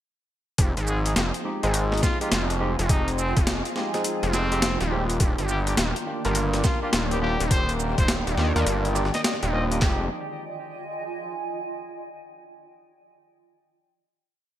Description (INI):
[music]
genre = glitch hop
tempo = 104 BPM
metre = 4/4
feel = swing 64% on 16ths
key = F dorian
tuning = A4 = 438 Hz
[part]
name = warm analog pad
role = sustained chords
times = 0.6-10.1 s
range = Eb3 to Ab4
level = -35 LUFS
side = equal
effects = none
[part]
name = barky tine electric piano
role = stabs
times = 0.6-10.0 s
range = Ab3 to C5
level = -30 LUFS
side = equal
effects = sidechain pumping, ping-pong delay
[part]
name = gritty driven synth bass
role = bass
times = 0.6-10.1 s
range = Eb1 to Eb2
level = -25 LUFS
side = equal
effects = none
[part]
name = boom bap sampler-style drum kit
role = drums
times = 0.6-10.0 s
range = handclaps, kick drum, snare drum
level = -23 LUFS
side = equal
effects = overdrive
[part]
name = boom bap sampler-style drum kit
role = drums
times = 0.6-9.8 s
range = hi-hat, shaker, snare drum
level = -28 LUFS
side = equal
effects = overdrive, gated reverb
[part]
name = granular cloud pad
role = texture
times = 1.4-12.1 s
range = Eb3 to Ab5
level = -34 LUFS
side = right 1 dB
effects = built-in reverb, analog chorus, sidechain pumping
[part]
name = breathy trumpet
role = melody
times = 0.9-9.8 s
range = C4 to Eb5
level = -32 LUFS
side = left 1 dB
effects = ping-pong delay
[sound]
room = light reverb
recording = bright 1980s-style digital production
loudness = -22 LUFS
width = side -12 dB against mid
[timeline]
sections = 0.6-9.8 drop; 9.8-12.1 final chord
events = drop 0.6-9.8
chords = 0.6 Fm7; 5.2 Ebmaj7; 9.8 Fm7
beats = | 0.59 1.17 1.74 2.32 | 2.90 3.47 4.05 4.63 | 5.20 5.78 6.36 6.93 | 7.51 8.09 8.66 9.24 | 9.82 10.40 10.97 11.55